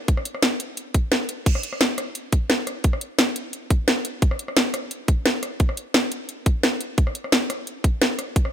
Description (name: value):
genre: drum and bass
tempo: 174 BPM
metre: 4/4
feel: straight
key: none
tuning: none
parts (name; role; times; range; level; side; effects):
- drum and bass drum kit; drums; 0.1-8.5 s; crash cymbal, hi-hat, rim click, snare drum; -22 LUFS; equal; none
- electronic kick drum; drums; 0.1-8.4 s; none; -19 LUFS; equal; none
room: little or no reverb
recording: none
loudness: -20 LUFS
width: side -10 dB against mid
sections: 0.0-8.5 A section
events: kick drops out 1.1-1.5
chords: none